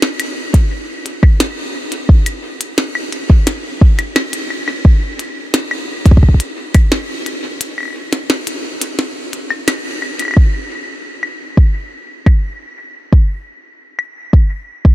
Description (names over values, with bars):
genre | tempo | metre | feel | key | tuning
IDM | 87 BPM | 4/4 | straight | none | none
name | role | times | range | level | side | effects
glitchy drum kit | drums | 0.0-14.1 s | claves, hi-hat, snare drum | -19 LUFS | equal | diffuse ambient delay
electronic kick drum | drums | 0.5-14.9 s | none | -8 LUFS | equal | none
room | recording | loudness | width
light reverb | none | -13 LUFS | side -15 dB against mid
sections
0.0-10.4 A section; 10.4-14.9 B section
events
break 7.6-10.4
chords
none